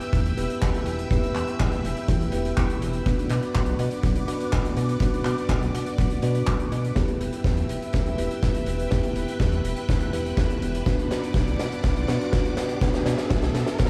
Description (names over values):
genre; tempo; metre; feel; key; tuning
italo disco; 123 BPM; 4/4; straight; E minor; A4 = 440 Hz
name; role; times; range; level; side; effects
string machine, full ensemble; sustained chords; 0.0-13.9 s; B4 to F#6; -37 LUFS; equal; phaser, ensemble chorus
bell-like tine electric piano; stabs; 0.0-13.9 s; B3 to B4; -32 LUFS; equal; none
oversized low-tuned drum kit; drums; 0.0-13.9 s; handclaps, hi-hat, snare drum; -36 LUFS; equal; high-pass filter on hats, high-pass filter on snare, high-pass filter on room
chorused synth bass; bass; 0.1-13.9 s; E1 to B2; -31 LUFS; equal; none
kick drum; drums; 0.1-13.9 s; none; -28 LUFS; equal; none
riser and reverse cymbal; sound effects; 10.6-13.9 s; none; -41 LUFS; equal; none
room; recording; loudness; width
light reverb; dark, warm production, vinyl crackle; -25 LUFS; mono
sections
0.0-7.0 A section; 7.0-13.9 B section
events
drum fill 7.0-13.9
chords
0.0 Em; 3.1 Bm; 7.0 Em; 10.9 Bm